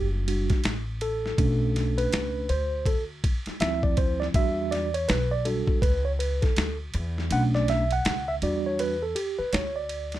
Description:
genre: hip hop, jazz-hop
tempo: 81 BPM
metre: 4/4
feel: swing 61% on 16ths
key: E dorian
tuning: A4 = 441 Hz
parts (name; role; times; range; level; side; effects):
- mellow tine electric piano; accompaniment; 0.0-10.2 s; F3 to F#5; -27 LUFS; right 2 dB; medium stereo tremolo
- upright bass; bass; 0.0-10.2 s; F#1 to E2; -29 LUFS; equal; none
- boom bap sampler-style drum kit; drums; 0.3-10.2 s; hi-hat, kick drum, ride cymbal, snare drum; -28 LUFS; equal; none
room: little or no reverb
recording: none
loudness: -24 LUFS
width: side -14 dB against mid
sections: 0.0-10.2 A section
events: tine electric piano solo 0.0-10.2; kick muted 7.3-10.2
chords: 0.0 Em9 (rootless); 1.4 Bm9; 2.5 Dm9; 4.3 Em9; 7.3 Bm9; 8.4 Em9

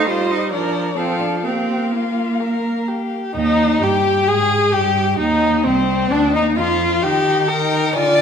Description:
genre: quick classical-period movement for string quartet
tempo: 130 BPM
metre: 4/4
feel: rubato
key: Bb major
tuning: A4 = 438 Hz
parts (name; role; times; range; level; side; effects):
- warm violin; melody; 0.0-8.2 s; C4 to Ab5; -25 LUFS; left 9 dB; none
- dark violin; second line; 0.0-8.2 s; C4 to D5; -19 LUFS; left 3 dB; none
- warm viola; accompaniment; 0.0-8.2 s; F3 to Ab4; -22 LUFS; right 2 dB; none
- rich cello; bass; 0.0-8.2 s; C2 to F4; -21 LUFS; right 3 dB; none
room: wet recital hall reverb, RT60 1.4 s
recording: minimal, uncompressed stereo recording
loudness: -15 LUFS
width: side -7 dB against mid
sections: 0.0-3.4 A section; 3.4-8.2 B section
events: none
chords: 0.0 F7(no3); 0.5 Bb/F; 1.0 F; 1.4 Bb5; 3.4 Eb; 4.3 N.C.; 5.2 Cm; 7.0 Eb

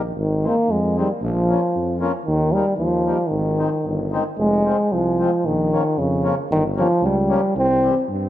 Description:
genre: alpine folk, alpine dance band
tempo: 114 BPM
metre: 2/4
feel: rubato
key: Ab major, F minor from 4.4 s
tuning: A4 = 440 Hz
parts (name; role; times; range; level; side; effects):
- warm tuba; bass; 0.0-8.3 s; F1 to G2; -24 LUFS; right 1 dB; none
- warm euphonium; melody; 0.2-8.1 s; Db3 to C4; -19 LUFS; equal; tape echo
- mellow accordion; accompaniment; 0.4-7.9 s; Eb3 to Db4; -27 LUFS; left 4 dB; none
room: moderate recital hall reverb, RT60 1.4 s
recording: none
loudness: -17 LUFS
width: side -13 dB against mid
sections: 0.0-4.4 A section; 4.4-8.3 B section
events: none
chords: 0.2 Ab; 1.2 Bbm; 2.3 Ebsus4; 2.8 Eb; 3.3 Ab; 4.4 Fm; 5.4 Bbm; 6.5 Gdim; 7.5 C

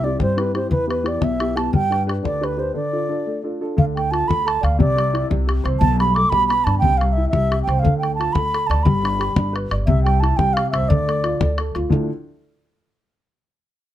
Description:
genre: celtic folk, Celtic jig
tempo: 118 BPM (dotted quarters)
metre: 6/8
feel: straight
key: D dorian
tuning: A4 = 440 Hz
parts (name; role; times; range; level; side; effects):
- mellow baroque flute; melody; 0.0-11.6 s; B4 to D6; -21 LUFS; right 2 dB; plate reverb
- dark upright piano; accompaniment; 0.0-12.1 s; D2 to D5; -24 LUFS; left 2 dB; none
- upright bass; bass; 0.0-12.1 s; G1 to G2; -22 LUFS; equal; none
- bodhran; percussion; 0.2-12.1 s; none; -21 LUFS; left 2 dB; none
room: light reverb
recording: close, detailed microphones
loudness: -17 LUFS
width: side -12 dB against mid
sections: 0.0-3.8 A section; 3.8-11.9 B section; 11.9-12.9 C section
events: break 2.8-3.8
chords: 0.0 C; 0.7 Em; 1.7 G; 2.8 Dm; 4.8 Cadd9; 5.8 Gadd9/B; 6.8 C; 7.8 Dm; 8.9 G; 9.9 C; 10.9 Dm; 11.9 Dmadd9

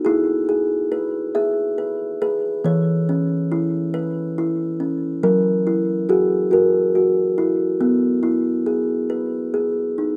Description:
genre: children's music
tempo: 46 BPM (dotted quarters)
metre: 6/8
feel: straight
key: E major pentatonic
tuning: A4 = 440 Hz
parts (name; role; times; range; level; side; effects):
- kalimba; solo; 0.0-10.2 s; E3 to E5; -20 LUFS; equal; none
room: little or no reverb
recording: recorded outdoors, with no room sound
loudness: -20 LUFS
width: mono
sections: 0.0-10.2 A section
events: none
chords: 0.1 E; 2.7 C#m7/E; 5.2 F#7; 7.8 E/B; 9.1 B6

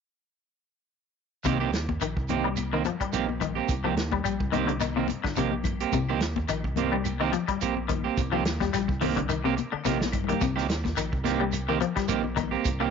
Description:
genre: afrobeat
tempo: 107 BPM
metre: 4/4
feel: swing 55% on 16ths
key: C minor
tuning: A4 = 441 Hz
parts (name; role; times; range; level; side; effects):
- electric guitar at the edge of break-up; arpeggios; 1.4-12.8 s; C3 to G3; -30 LUFS; left 10 dB; ensemble chorus
- shekere; percussion; 1.4-12.8 s; none; -37 LUFS; right 8 dB; none
- electric guitar at the edge of break-up; stabs; 1.5-12.9 s; Eb3 to G4; -29 LUFS; right 12 dB; none
- fingered electric bass; bass; 1.5-12.9 s; Bb1 to Eb2; -33 LUFS; equal; transformer saturation
- warm soul drum kit; drums; 1.5-12.8 s; hi-hat, kick drum, snare drum; -32 LUFS; right 1 dB; none
- claves; percussion; 1.6-12.9 s; none; -44 LUFS; left 11 dB; none
- congas; percussion; 1.9-12.5 s; none; -34 LUFS; left 11 dB; none
room: moderate spring reverb, RT60 1.7 s, small room ambience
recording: 1960s-style stereo with parts hard left and right, nothing above 7.5 kHz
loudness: -25 LUFS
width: side -6 dB against mid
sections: 1.5-12.9 A section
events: drum fill 9.9-10.4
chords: 1.5 Cm7

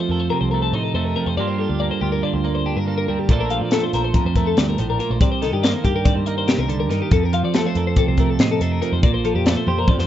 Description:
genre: math rock and midwest emo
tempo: 282 BPM (eighths)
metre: 9/8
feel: straight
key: Bb major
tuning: A4 = 440 Hz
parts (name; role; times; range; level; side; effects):
- twelve-string electric guitar; accompaniment; 0.0-10.1 s; F2 to C5; -22 LUFS; right 5 dB; lush chorus
- twelve-string electric guitar; arpeggios; 0.0-10.1 s; G4 to F5; -24 LUFS; left 7 dB; tape echo
- vintage muted picked electric bass; bass; 0.1-10.1 s; Bb1 to F3; -24 LUFS; equal; none
- crisp fusion drum kit; drums; 3.3-10.1 s; hi-hat, kick drum, snare drum, toms; -19 LUFS; left 1 dB; none
room: small room ambience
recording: rough home demo mix, nothing above 7.8 kHz, faint mains hum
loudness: -17 LUFS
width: side -11 dB against mid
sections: 0.0-10.1 A section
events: drum fill 9.7-10.1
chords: 0.0 F7; 1.4 Gm7; 3.3 Bbmaj7; 5.2 Cm7; 7.1 F7; 9.0 Bbmaj7

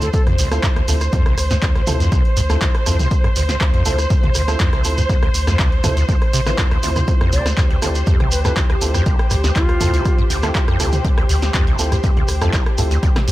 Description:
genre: acid house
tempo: 121 BPM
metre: 4/4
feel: straight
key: unclear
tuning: A4 = 440 Hz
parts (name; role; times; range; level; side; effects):
- hollow concert flute; melody; 0.0-0.2, 7.3-10.3 s; F4 to D5; -27 LUFS; left 1 dB; dub echo
- lush unison pad; sustained chords; 0.0-13.3 s; G4 to C5; -28 LUFS; equal; chorus, sidechain pumping
- deep acid bass; riff; 0.0-13.3 s; C2 to D3; -22 LUFS; equal; overdrive, wide subtle chorus
- warm sub bass; bass; 0.0-13.3 s; A1 to D2; -20 LUFS; equal; sidechain pumping
- punchy analog drum machine; drums; 0.0-13.3 s; handclaps, hi-hat, rim click, snare drum, toms; -25 LUFS; equal; none
- shekere; percussion; 0.0-13.3 s; none; -28 LUFS; right 3 dB; none
- rich studio string section; texture; 0.0-13.3 s; C5; -28 LUFS; equal; sidechain pumping
- electronic kick drum; drums; 0.1-13.1 s; none; -17 LUFS; equal; none
- dark baby grand piano; stabs; 0.5-12.8 s; C4 to C5; -28 LUFS; right 2 dB; dub echo
room: little or no reverb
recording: none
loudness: -14 LUFS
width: side -16 dB against mid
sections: 0.0-13.3 A section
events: none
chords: 0.0 Dm7

